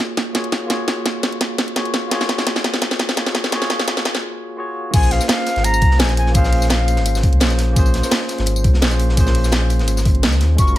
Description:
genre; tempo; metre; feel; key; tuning
liquid drum and bass; 170 BPM; 4/4; straight; Bb minor; A4 = 440 Hz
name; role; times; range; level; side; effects
tine electric piano; accompaniment; 0.0-10.8 s; Ab3 to Db5; -24 LUFS; equal; medium tremolo, dub echo
garage drum kit; drums; 0.0-10.8 s; crash cymbal, hi-hat, snare drum, tambourine; -20 LUFS; equal; none
reedy silver concert flute; melody; 4.9-7.2, 10.6-10.8 s; F5 to Db6; -22 LUFS; left 1 dB; dub echo
warm sub bass; bass; 4.9-10.8 s; Gb1 to Eb2; -17 LUFS; equal; none
crunchy breakbeat drum kit; drums; 4.9-10.8 s; hi-hat, snare drum; -29 LUFS; equal; high-pass filter on hats, high-pass filter on snare, high-pass filter on room
electronic kick drum; drums; 4.9-10.7 s; none; -15 LUFS; equal; none
room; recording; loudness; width
light reverb, studio ambience; high-pass filter; -15 LUFS; side -14 dB against mid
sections
0.0-4.9 A section; 4.9-10.8 B section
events
build-up 0.0-4.9; drum fill 0.0-4.2; break 4.2-4.9; drop 4.9-10.8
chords
0.0 Gbmaj9; 4.9 Bbm9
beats
0.00 0.35 | 0.70 1.05 1.41 1.76 | 2.11 2.47 2.82 3.17 | 3.52 3.88 4.23 4.58 | 4.94 5.29 5.64 6.00 | 6.35 6.70 7.05 7.41 | 7.76 8.11 8.47 8.82 | 9.17 9.52 9.88 10.23 | 10.58

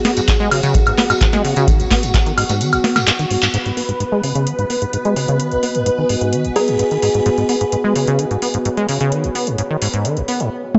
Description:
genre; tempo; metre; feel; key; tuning
acid house; 129 BPM; 4/4; straight; G# minor; A4 = 440 Hz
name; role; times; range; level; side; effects
string machine, full ensemble; sustained chords; 0.0-10.5 s; F#4 to B4; -26 LUFS; equal; ensemble chorus, sidechain pumping
acid bass, saw; riff; 0.0-10.5 s; G#1 to B3; -22 LUFS; equal; tube saturation, analog chorus, sidechain pumping, tape echo
booming analog drum machine; drums; 0.0-10.8 s; handclaps, hi-hat, snare drum, toms, woodblock; -22 LUFS; equal; none
deep dark ambient pad; texture; 0.0-10.5 s; B3 to G#5; -27 LUFS; equal; chorus, built-in reverb, sidechain pumping
tambourine; percussion; 0.2-3.5 s; none; -32 LUFS; equal; none
electronic kick drum; drums; 0.3-2.2 s; none; -18 LUFS; equal; none
buzzing kalimba; melody; 6.6-6.9 s; G#4; -25 LUFS; equal; delay
room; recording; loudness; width
moderate lush hall reverb, RT60 1.9 s, digital ambience; nothing above 7.9 kHz; -17 LUFS; mono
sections
0.0-3.5 A section; 3.5-10.8 B section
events
kick drops out 2.6-3.5; drum fill 3.1-3.5; band accent 3.4; filter sweep on acid bass 3.5-10.8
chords
0.0 G#m7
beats
0.28 0.75 1.21 | 1.68 2.14 2.61 3.07 | 3.54 4.00 4.47 4.93 | 5.40 5.86 6.33 6.79 | 7.26 7.72 8.19 8.65 | 9.12 9.58 10.05 10.51

